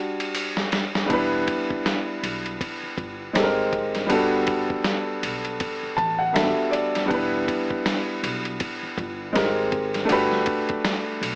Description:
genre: hip hop, jazz-hop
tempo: 80 BPM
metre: 4/4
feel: swing 59% on 16ths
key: E minor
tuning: A4 = 441 Hz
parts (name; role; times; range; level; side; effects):
- warm upright piano; accompaniment; 0.0-11.4 s; G3 to A5; -26 LUFS; equal; none
- dusty soul sampler-style drum kit; drums; 0.2-11.4 s; hi-hat, kick drum, ride cymbal, snare drum; -30 LUFS; equal; overdrive
- upright bass; bass; 1.1-11.4 s; E1 to B1; -38 LUFS; equal; none
room: light reverb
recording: vinyl crackle, AM radio sound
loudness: -24 LUFS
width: mono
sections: 0.0-1.1 A section; 1.1-11.4 B section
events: break 0.0-1.1; drum fill 0.0-1.1; upright piano solo 0.0-1.1; upright piano fill 5.6-7.1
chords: 0.0 Dadd11/G; 1.1 Em7; 3.3 G#maj9; 4.1 Gmaj9; 7.1 Em7; 9.3 G#maj9; 10.1 Gmaj9

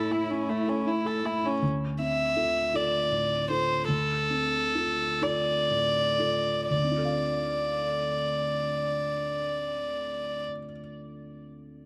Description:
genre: neoclassical piano and strings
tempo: 39-54 BPM (dotted quarters)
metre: 6/8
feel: rubato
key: D minor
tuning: A4 = 439 Hz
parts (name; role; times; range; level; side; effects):
- rich violin; melody; 0.0-10.4 s; A3 to E5; -29 LUFS; equal; tape echo
- dark cello; second line; 0.0-1.0 s; E4; -36 LUFS; equal; none
- dark viola; accompaniment; 0.0-1.4 s; E4; -40 LUFS; equal; none
- felt-muted upright piano; accompaniment; 0.0-11.9 s; D2 to F5; -34 LUFS; equal; none
room: light reverb, studio ambience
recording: none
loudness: -28 LUFS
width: mono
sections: 0.0-1.6 A section; 1.6-6.7 B section; 6.7-11.9 C section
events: slowing down 0.5-6.7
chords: 0.0 A; 1.6 Dm7

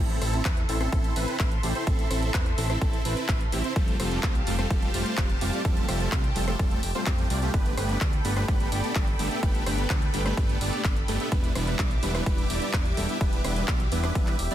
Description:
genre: EDM, festival progressive house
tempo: 127 BPM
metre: 4/4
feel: straight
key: A minor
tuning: A4 = 440 Hz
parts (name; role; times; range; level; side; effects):
- supersaw pad; sustained chords; 0.2-14.5 s; G4 to D6; -35 LUFS; equal; phaser, sidechain pumping
- dense compressed supersaw; riff; 0.0-14.5 s; G3 to E5; -30 LUFS; right 1 dB; sidechain pumping, tape echo
- fat analog bass; bass; 0.0-14.5 s; E1 to F2; -30 LUFS; equal; sidechain pumping
- big-room dance drum kit; drums; 0.1-14.5 s; handclaps, hi-hat, rim click; -34 LUFS; equal; overdrive, studio reverb
- electronic kick drum; drums; 0.5-14.2 s; none; -26 LUFS; equal; overdrive, studio reverb
room: digital ambience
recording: dense, heavily limited modern master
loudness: -23 LUFS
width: side -12 dB against mid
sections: 0.0-14.5 A section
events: drop 0.0-14.5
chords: 0.0 Am; 3.8 Fadd9; 7.5 Gadd9; 11.3 Em7

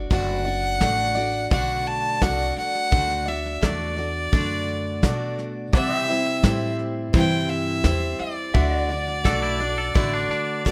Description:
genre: honky-tonk and classic country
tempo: 85 BPM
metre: 4/4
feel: straight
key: D mixolydian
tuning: A4 = 440 Hz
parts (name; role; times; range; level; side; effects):
- picked steel-string acoustic guitar; accompaniment; 0.0-10.7 s; C3 to D5; -30 LUFS; equal; none
- pedal steel guitar; sustained chords; 0.0-10.7 s; D5 to G5; -34 LUFS; equal; none
- upright bass; bass; 0.0-10.7 s; F#1 to C3; -31 LUFS; equal; none
- clear fiddle; melody; 0.1-10.7 s; D5 to A5; -28 LUFS; equal; none
- soft brush drum kit; drums; 0.1-10.7 s; hi-hat, kick drum, snare drum; -24 LUFS; equal; none
- clear upright piano; accompaniment; 0.8-10.7 s; F#4 to E5; -35 LUFS; equal; none
- twangy electric guitar; second line; 9.3-10.6 s; D4 to A4; -30 LUFS; equal; none
room: light reverb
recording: none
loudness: -23 LUFS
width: mono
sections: 0.0-10.7 A section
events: none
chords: 0.0 D; 5.7 C; 8.5 D

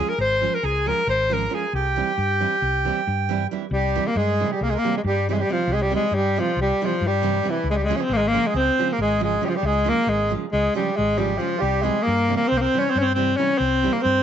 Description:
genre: balkan folk, Balkan wedding band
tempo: 273 BPM (eighths)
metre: 9/8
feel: straight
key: C phrygian dominant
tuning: A4 = 440 Hz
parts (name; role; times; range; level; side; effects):
- clear alto saxophone; melody; 0.0-14.2 s; E3 to C5; -22 LUFS; left 3 dB; none
- accordion; second line; 0.0-14.2 s; E4 to C6; -26 LUFS; right 10 dB; none
- nylon-string guitar; accompaniment; 0.0-14.0 s; C3 to F4; -29 LUFS; right 12 dB; none
- hollow-body short-scale fingered electric bass; bass; 0.2-14.2 s; Ab1 to G2; -26 LUFS; left 1 dB; none
room: moderate spring reverb, RT60 1.6 s, small room reverb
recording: 1960s-style stereo, nothing above 7.8 kHz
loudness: -19 LUFS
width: side -9 dB against mid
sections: 0.0-3.7 A section; 3.7-14.2 B section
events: none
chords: 0.0 Db; 1.7 C; 7.7 Db; 11.6 C

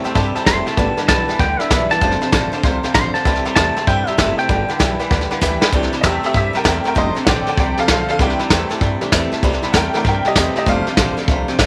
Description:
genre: rockabilly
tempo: 194 BPM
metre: 4/4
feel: swing 65% on 8ths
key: C major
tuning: A4 = 440 Hz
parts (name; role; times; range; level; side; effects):
- honky-tonk upright piano; accompaniment; 0.0-11.7 s; E3 to C6; -24 LUFS; equal; none
- picked swing-style acoustic guitar; accompaniment; 0.0-11.7 s; C3 to C5; -27 LUFS; equal; none
- twangy electric guitar; riff; 0.0-11.7 s; F2 to A3; -26 LUFS; equal; none
- upright bass; bass; 0.0-11.7 s; F1 to G2; -26 LUFS; equal; none
- vintage brush drum kit; drums; 0.0-11.7 s; hi-hat, kick drum, snare drum; -20 LUFS; equal; none
- twangy electric guitar; melody; 0.5-5.0 s; E5 to C6; -22 LUFS; equal; tape echo
room: light reverb, small room ambience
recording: none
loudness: -17 LUFS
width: mono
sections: 0.0-5.7 A section; 5.7-11.7 B section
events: drum fill 5.4-5.7; honky-tonk piano solo 5.7-11.7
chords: 0.0 C6; 0.8 G6; 2.0 F6; 3.3 C6; 4.5 G6; 5.7 C6; 7.0 F6; 8.2 C6; 10.7 F6

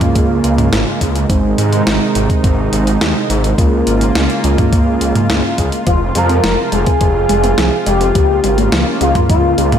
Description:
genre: synthwave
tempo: 105 BPM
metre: 4/4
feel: straight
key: unclear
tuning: A4 = 440 Hz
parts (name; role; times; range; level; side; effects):
- brassy analog pad; sustained chords; 0.0-9.8 s; C3 to F4; -18 LUFS; right 1 dB; chorus, sidechain pumping
- mellow FM electric piano; stabs; 0.0-5.8 s; Ab3 to Eb5; -20 LUFS; right 3 dB; chorus, tape echo, slapback echo
- clean 12-bit digital drum machine; drums; 0.0-9.8 s; hi-hat, snare drum, toms; -19 LUFS; equal; none
- electronic kick drum; drums; 0.0-9.4 s; none; -15 LUFS; equal; none
- wide detuned saw bass; bass; 0.2-9.8 s; F1 to Ab2; -16 LUFS; equal; chorus, tube saturation, sidechain pumping
- expressive portamento lead; melody; 5.9-9.8 s; F4 to Bb4; -15 LUFS; left 1 dB; analog chorus, ping-pong delay, slapback echo
- wide unison pluck; arpeggios; 5.9-9.8 s; F3 to C4; -21 LUFS; left 2 dB; tape echo, slapback echo
room: moderate lush hall reverb, RT60 2.4 s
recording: big arena sound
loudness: -11 LUFS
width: side -8 dB against mid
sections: 0.0-9.8 A section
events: none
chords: 0.0 Db6; 1.3 Ab; 3.6 Db6; 5.9 Fm; 8.2 Db6

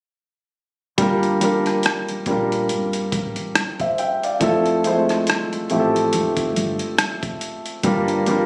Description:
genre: R&B, neo-soul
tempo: 70 BPM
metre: 4/4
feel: swing 57% on 16ths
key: G dorian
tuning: A4 = 440 Hz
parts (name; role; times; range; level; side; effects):
- warm grand piano; accompaniment; 1.0-8.5 s; F3 to G5; -22 LUFS; equal; none
- upright bass; bass; 1.0-8.5 s; F1 to Bb1; -31 LUFS; equal; none
- boom bap sampler-style drum kit; drums; 1.0-8.5 s; hi-hat, kick drum, rim click; -26 LUFS; equal; none
room: moderate studio ambience, RT60 0.5 s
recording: recorded on a phone in the room, studio reverb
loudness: -21 LUFS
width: mono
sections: 1.0-7.8 A section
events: none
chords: 1.0 Gm7; 4.4 Fmaj7; 7.8 Gm7

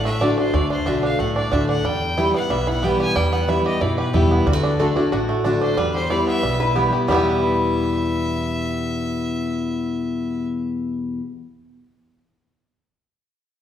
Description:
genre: bluegrass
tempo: 183 BPM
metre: 4/4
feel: straight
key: E minor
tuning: A4 = 438 Hz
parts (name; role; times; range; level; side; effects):
- clear fiddle; melody; 0.0-10.5 s; E4 to G#5; -28 LUFS; equal; none
- picked steel-string acoustic guitar; accompaniment; 0.0-11.2 s; E2 to F#4; -22 LUFS; left 2 dB; none
- bluegrass banjo; arpeggios; 0.0-11.2 s; G3 to G4; -24 LUFS; right 2 dB; none
- upright bass; bass; 0.0-11.2 s; A1 to F#2; -26 LUFS; equal; none
- mandolin; stabs; 0.2-11.2 s; A3 to G5; -29 LUFS; right 1 dB; none
- lap resonator guitar; second line; 4.8-11.2 s; E4 to B4; -26 LUFS; left 2 dB; none
room: wet large studio reverb, RT60 1.5 s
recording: band playing live in one room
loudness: -18 LUFS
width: side -10 dB against mid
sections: 0.0-7.1 A section; 7.1-9.7 B section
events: none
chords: 0.0 D; 1.9 Em; 4.5 D; 5.8 Em

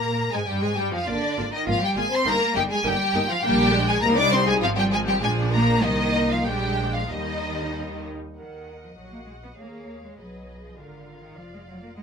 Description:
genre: quick classical-period movement for string orchestra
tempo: 100 BPM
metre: 2/4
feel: rubato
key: Eb major, Eb minor from 8.4 s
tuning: A4 = 440 Hz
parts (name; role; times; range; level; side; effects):
- rich studio violin section; melody; 0.0-12.0 s; D5 to D6; -25 LUFS; left 2 dB; none
- rich studio violin section; second line; 0.0-12.0 s; D4 to Eb5; -28 LUFS; left 2 dB; none
- rich studio viola section; accompaniment; 0.0-12.0 s; F3 to Bb4; -28 LUFS; left 1 dB; none
- rich studio cello section; bass; 0.0-12.0 s; D3 to D4; -29 LUFS; right 1 dB; none
- warm studio double bass section; bass; 0.0-12.0 s; F1 to Bb2; -29 LUFS; right 2 dB; none
room: moderate studio reverb, RT60 0.8 s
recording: minimal, uncompressed stereo recording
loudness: -20 LUFS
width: side -6 dB against mid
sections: 0.0-8.4 A section; 8.4-12.0 A section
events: none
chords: 0.0 Fm; 1.1 Bb7/Ab; 2.3 Eb/G; 3.4 Gm/Bb; 4.0 Cm; 4.6 Fm/Ab; 5.2 Bb; 5.8 Cm7; 6.4 Bb7; 7.1 Eb; 8.4 Ebm; 9.6 Fdim/Eb; 10.8 Bb7/Ab

